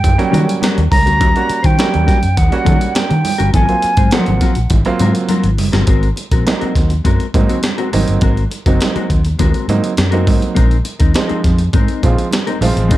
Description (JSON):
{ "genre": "funk", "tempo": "102 BPM", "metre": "4/4", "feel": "straight", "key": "unclear", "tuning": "A4 = 440 Hz", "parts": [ { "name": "silver concert flute", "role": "melody", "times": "0.0-4.7 s", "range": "Gb5 to Bb5", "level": "-18 LUFS", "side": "right 2 dB", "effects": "none" }, { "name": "vintage muted fingered electric bass", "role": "bass", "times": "0.0-13.0 s", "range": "Gb1 to Eb3", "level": "-16 LUFS", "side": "equal", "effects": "none" }, { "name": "breakbeat sampler-style drum kit", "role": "drums", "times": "0.0-13.0 s", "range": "hi-hat, kick drum, snare drum", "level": "-16 LUFS", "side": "equal", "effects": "none" }, { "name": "congas", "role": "percussion", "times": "0.0-13.0 s", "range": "none", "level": "-25 LUFS", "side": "right 6 dB", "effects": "none" }, { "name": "mellow electric guitar", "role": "accompaniment", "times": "0.2-13.0 s", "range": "Gb3 to C5", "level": "-20 LUFS", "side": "left 6 dB", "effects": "analog chorus" }, { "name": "warm upright piano", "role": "stabs", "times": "0.2-13.0 s", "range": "F3 to F#4", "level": "-19 LUFS", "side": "right 4 dB", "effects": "none" } ], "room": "studio ambience", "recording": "dark, warm production", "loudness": "-12 LUFS", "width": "side -15 dB against mid", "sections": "0.0-5.9 A section; 5.9-13.0 B section", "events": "drum fill 4.7-5.9", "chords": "0.0 Eb7#9; 3.5 Ab13; 5.9 Ab9; 10.6 Bb9sus4" }